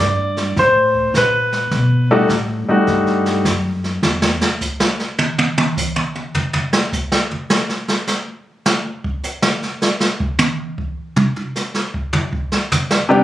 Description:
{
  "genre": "jazz piano trio",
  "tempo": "104 BPM",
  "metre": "4/4",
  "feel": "swing 66% on 8ths",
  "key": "unclear",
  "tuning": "A4 = 440 Hz",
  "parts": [
    { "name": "clear grand piano", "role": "melody", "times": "0.0-3.4, 13.1-13.2 s", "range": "C3 to D5", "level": "-15 LUFS", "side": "left 1 dB", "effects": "plate reverb" },
    { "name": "upright bass", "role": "bass", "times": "0.0-4.4 s", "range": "E2 to B2", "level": "-20 LUFS", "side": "equal", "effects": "none" },
    { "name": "jazz brush drum kit", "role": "drums", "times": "0.4-13.2 s", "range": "brushed snare drum, hi-hat, kick drum, snare drum, toms", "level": "-18 LUFS", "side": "right 1 dB", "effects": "none" }
  ],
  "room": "moderate club reverb, RT60 0.8 s",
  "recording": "recorded on a phone in the room, studio ambience, compression",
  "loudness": "-15 LUFS",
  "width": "side -13 dB against mid",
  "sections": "0.0-13.2 A section",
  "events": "grand piano solo 0.0-13.2; drum solo 4.0-13.2",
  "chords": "0.0 F (rootless); 1.7 B7b13; 4.0 N.C.",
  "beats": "0.56 1.14 | 1.72 2.30 2.87 3.45 | 4.03 4.61 5.19 5.77 | 6.34 6.92 7.50 8.08 | 8.66 9.24 9.82 10.40 | 10.98 11.56 12.14 12.72"
}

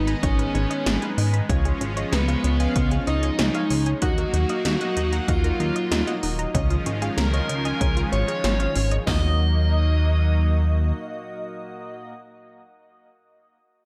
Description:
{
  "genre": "synthwave",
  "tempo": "95 BPM",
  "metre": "4/4",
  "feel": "straight",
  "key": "Eb minor",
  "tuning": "A4 = 439 Hz",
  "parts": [
    { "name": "dark smooth lead guitar", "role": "melody", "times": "0.0-12.1 s", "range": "Cb4 to Eb5", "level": "-30 LUFS", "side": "equal", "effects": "overdrive, vintage 12-bit sampler grit, tape echo" },
    { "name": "FM electric piano with soft pad layer", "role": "second line", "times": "0.0-12.1 s", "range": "Cb5 to Eb6", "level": "-41 LUFS", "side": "equal", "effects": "chorus, phaser, tape echo" },
    { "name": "warm analog pad", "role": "sustained chords", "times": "0.0-12.1 s", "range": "Eb3 to F4", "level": "-33 LUFS", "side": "equal", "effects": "chorus, sidechain pumping" },
    { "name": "chorused polysynth", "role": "stabs", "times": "0.0-12.1 s", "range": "Gb3 to Ab5", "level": "-36 LUFS", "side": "equal", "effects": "tape echo" },
    { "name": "chorused synth bass", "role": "bass", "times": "0.0-10.9 s", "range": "Eb1 to Ab2", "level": "-25 LUFS", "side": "equal", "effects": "none" },
    { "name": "analog pluck", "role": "arpeggios", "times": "0.1-9.4 s", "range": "Db4 to Cb6", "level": "-36 LUFS", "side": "equal", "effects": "chorus, cassette tape, tape echo" },
    { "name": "80s electronic pad drums", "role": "drums", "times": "0.1-9.0 s", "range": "hi-hat, snare drum", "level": "-30 LUFS", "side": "equal", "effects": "gated reverb" },
    { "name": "80s electronic pad drums", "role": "drums", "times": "0.2-9.2 s", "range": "hi-hat, kick drum, snare drum", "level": "-27 LUFS", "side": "equal", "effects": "gated reverb" }
  ],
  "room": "light reverb",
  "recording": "none",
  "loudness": "-22 LUFS",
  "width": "mono",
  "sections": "0.0-9.1 A section; 9.1-11.6 B section",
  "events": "none",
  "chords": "0.0 Abm; 1.5 Db; 4.0 Ebm; 6.5 Dbadd9; 9.1 Ebm",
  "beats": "0.23 0.86 | 1.49 2.12 2.76 3.39 | 4.02 4.65 5.28 5.91 | 6.55 7.18 7.81 8.44 | 9.07 9.70 10.34 10.97"
}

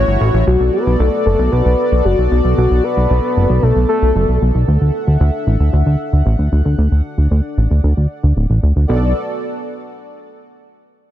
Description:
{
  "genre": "synthwave",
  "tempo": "114 BPM",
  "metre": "4/4",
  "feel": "straight",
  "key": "B minor",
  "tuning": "A4 = 440 Hz",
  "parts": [
    { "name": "soft octave-layered synth lead", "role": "melody", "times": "0.0-4.4 s", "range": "F#4 to C#5", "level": "-18 LUFS", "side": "left 3 dB", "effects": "chorus, tremolo, cassette tape, digital delay" },
    { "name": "warm analog pad", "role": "sustained chords", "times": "0.0-9.1 s", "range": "A3 to F#5", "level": "-21 LUFS", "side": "equal", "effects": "chorus" },
    { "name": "fat analog bass", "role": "bass", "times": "0.0-9.1 s", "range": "D1 to D2", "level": "-13 LUFS", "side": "equal", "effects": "none" }
  ],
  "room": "light reverb, digital ambience",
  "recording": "dense, heavily limited modern master",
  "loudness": "-12 LUFS",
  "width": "side -12 dB against mid",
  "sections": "0.5-8.9 A section; 8.9-11.0 B section",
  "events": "filter sweep on analog synth bass 0.5-8.9",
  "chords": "0.5 Bm7; 4.7 Dadd9; 8.9 Bm7",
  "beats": "| 0.47 0.99 1.52 2.05 | 2.57 3.10 3.63 4.15 | 4.68 5.21 5.73 6.26 | 6.78 7.31 7.84 8.36 | 8.89"
}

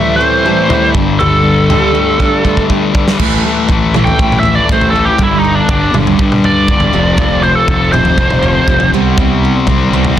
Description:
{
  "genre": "quiet-loud alternative rock",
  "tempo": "120 BPM",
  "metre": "4/4",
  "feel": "straight",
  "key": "A minor",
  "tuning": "A4 = 440 Hz",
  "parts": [
    { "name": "biting lead guitar", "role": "melody", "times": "0.0-8.9 s", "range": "D4 to G5", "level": "-14 LUFS", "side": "right 2 dB", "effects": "overdrive" },
    { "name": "picked steel-string acoustic guitar", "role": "arpeggios", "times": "0.0-10.2 s", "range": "F2 to G4", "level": "-18 LUFS", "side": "right 9 dB", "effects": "none" },
    { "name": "thick fuzz guitar", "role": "riff", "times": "0.0-10.2 s", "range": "F2 to C4", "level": "-14 LUFS", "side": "left 5 dB", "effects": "distortion" },
    { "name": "loose indie drum kit", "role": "drums", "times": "0.7-10.2 s", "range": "crash cymbal, kick drum, snare drum, toms", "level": "-15 LUFS", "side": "equal", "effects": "none" },
    { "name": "fuzz fingered electric bass", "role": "bass", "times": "0.9-10.2 s", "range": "F1 to G2", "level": "-16 LUFS", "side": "equal", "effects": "overdrive" }
  ],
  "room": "moderate large studio reverb, RT60 1.3 s, small room ambience",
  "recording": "dense, heavily limited modern master",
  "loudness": "-9 LUFS",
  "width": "side -11 dB against mid",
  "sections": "0.0-3.2 A section; 3.2-10.2 B section",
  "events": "half time 0.0-3.2; drum fill 2.2-3.2; lead electric guitar solo 3.2-10.2",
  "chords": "0.0 Am7; 0.9 Gsus2; 3.2 A5; 5.2 G5; 6.9 F5; 8.9 C5",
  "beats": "0.20 0.70 | 1.20 1.70 2.19 2.69 | 3.19 3.69 4.19 4.69 | 5.19 5.69 6.18 6.68 | 7.18 7.68 8.18 8.68 | 9.18 9.68 10.18"
}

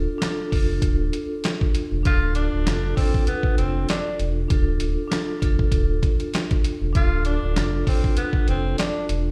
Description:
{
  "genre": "hip hop, boom-bap hip-hop",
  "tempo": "98 BPM",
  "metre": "4/4",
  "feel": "swing 56% on 16ths",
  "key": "D dorian",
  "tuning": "A4 = 443 Hz",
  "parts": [
    { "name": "vibraphone with medium mallets", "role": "accompaniment", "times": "0.0-9.3 s", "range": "D4 to A4", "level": "-30 LUFS", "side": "equal", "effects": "cassette tape, high-pass filter, low-pass filter" },
    { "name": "sub bass with octave", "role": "bass", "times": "0.0-9.3 s", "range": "D1 to F1", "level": "-26 LUFS", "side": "equal", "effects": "none" },
    { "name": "boom bap sampler-style drum kit", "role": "drums", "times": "0.2-9.3 s", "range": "handclaps, hi-hat, kick drum, snare drum", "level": "-24 LUFS", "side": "equal", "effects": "none" },
    { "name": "breathy tenor saxophone", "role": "melody", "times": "2.1-9.1 s", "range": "B3 to F4", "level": "-30 LUFS", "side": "equal", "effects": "high-pass filter, low-pass filter, slapback echo" }
  ],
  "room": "studio reverb",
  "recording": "played on a big sound system in a bare room, stone room reverb",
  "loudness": "-22 LUFS",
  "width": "mono",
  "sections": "0.0-9.3 A section",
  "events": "none",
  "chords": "0.0 Dm",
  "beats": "0.21 0.83 1.44 | 2.05 2.66 3.27 3.89 | 4.50 5.11 5.72 6.34 | 6.95 7.56 8.17 8.79"
}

